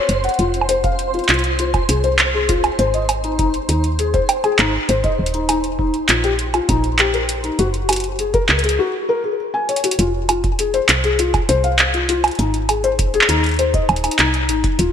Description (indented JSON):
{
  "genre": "IDM",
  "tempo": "100 BPM",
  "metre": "4/4",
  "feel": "straight",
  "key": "F minor",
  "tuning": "A4 = 440 Hz",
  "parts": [
    { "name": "felt-muted upright piano", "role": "arpeggios", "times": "0.0-14.9 s", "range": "Eb4 to Ab5", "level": "-19 LUFS", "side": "left 4 dB", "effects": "ping-pong delay" },
    { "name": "flickering grainy texture", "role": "texture", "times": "0.0-8.8 s", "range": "C5", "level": "-29 LUFS", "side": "right 3 dB", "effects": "built-in reverb, ensemble chorus" },
    { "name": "woody FM bass", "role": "bass", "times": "0.1-14.9 s", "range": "Eb1 to Eb2", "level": "-21 LUFS", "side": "right 1 dB", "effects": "none" },
    { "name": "electro analog drum machine", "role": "drums", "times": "0.1-14.9 s", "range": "bongos, handclaps, hi-hat", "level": "-18 LUFS", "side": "right 2 dB", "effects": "gated reverb, ping-pong delay" },
    { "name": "electronic kick drum", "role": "drums", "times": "0.8-14.8 s", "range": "none", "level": "-21 LUFS", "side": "right 1 dB", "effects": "none" }
  ],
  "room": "moderate lush hall reverb, RT60 2.4 s",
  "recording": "bright 1980s-style digital production",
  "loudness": "-15 LUFS",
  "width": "side -8 dB against mid",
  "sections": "0.0-10.0 A section; 10.0-14.9 B section",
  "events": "break 8.8-10.0; drum fill 9.7-10.0",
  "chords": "0.4 F5; 2.8 Ab; 5.2 Eb5; 7.6 Gbsus2; 10.0 F5; 12.4 Ab"
}